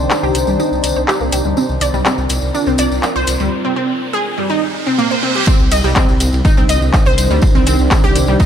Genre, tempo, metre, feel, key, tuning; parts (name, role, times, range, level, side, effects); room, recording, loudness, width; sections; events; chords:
melodic techno; 123 BPM; 4/4; straight; C minor; A4 = 437 Hz
deep dark ambient pad; sustained chords; 0.0-8.5 s; C4 to D5; -23 LUFS; left 1 dB; chorus, built-in reverb, sidechain pumping
dark detuned saw bass; bass; 0.0-8.4 s; C2 to D2; -18 LUFS; equal; sidechain pumping
riser and reverse cymbal; sound effects; 3.0-5.5 s; -25 LUFS; right 4 dB
granular cloud pad; texture; 0.0-8.5 s; Eb3 to Bb5; -25 LUFS; left 1 dB; built-in reverb, sidechain pumping
techno drum kit; drums; 0.1-8.3 s; handclaps, hi-hat; -18 LUFS; left 1 dB
tambourine; percussion; 0.1-8.5 s; -27 LUFS; left 2 dB
wide unison pluck; arpeggios; 0.2-8.5 s; G3 to Eb5; -17 LUFS; right 1 dB; analog chorus, sidechain pumping, dub echo
electronic kick drum; drums; 5.5-8.5 s; -13 LUFS; equal
warm soul drum kit; drums; 5.5-8.5 s; hi-hat, ride cymbal, snare drum; -30 LUFS; right 3 dB; high-pass filter on cymbals, high-pass filter on hats, high-pass filter on snare, high-pass filter on room
light reverb; dark, warm production; -12 LUFS; side -9 dB against mid
0.0-5.5 A section; 5.5-8.5 B section
build-up 0.0-5.5; filter sweep on synth pluck 0.0-5.5; riser 3.0-5.5; reverse cymbal 4.5-5.5; drop 5.5-8.5
0.0 Cmadd9; 1.6 Bb/C; 3.5 Gsus4; 5.5 Cmadd9